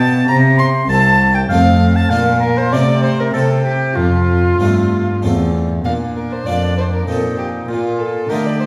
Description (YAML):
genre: classical, baroque-style sonata movement with continuo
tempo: 98 BPM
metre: 3/4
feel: straight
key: F major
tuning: A4 = 444 Hz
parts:
  - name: clear oboe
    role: melody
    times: 0.0-8.7 s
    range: D4 to C6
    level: -22 LUFS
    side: equal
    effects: none
  - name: warm violin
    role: second line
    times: 0.0-8.7 s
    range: F4 to C6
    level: -23 LUFS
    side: equal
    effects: none
  - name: harpsichord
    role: accompaniment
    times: 0.0-8.7 s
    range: C2 to F4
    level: -23 LUFS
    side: equal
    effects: none
  - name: warm cello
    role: bass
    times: 0.0-8.7 s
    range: C2 to D3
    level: -18 LUFS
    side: equal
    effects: none
room: wet recital hall reverb, RT60 1.5 s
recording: heard from further back in the room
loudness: -15 LUFS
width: mono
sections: 0.0-5.9 A section; 5.9-8.7 A section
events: none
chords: 0.3 C; 1.5 F; 2.1 Bb; 2.7 F/C; 3.3 C; 4.0 F; 5.9 Bb; 7.1 Cm7/Bb; 7.7 F7/Bb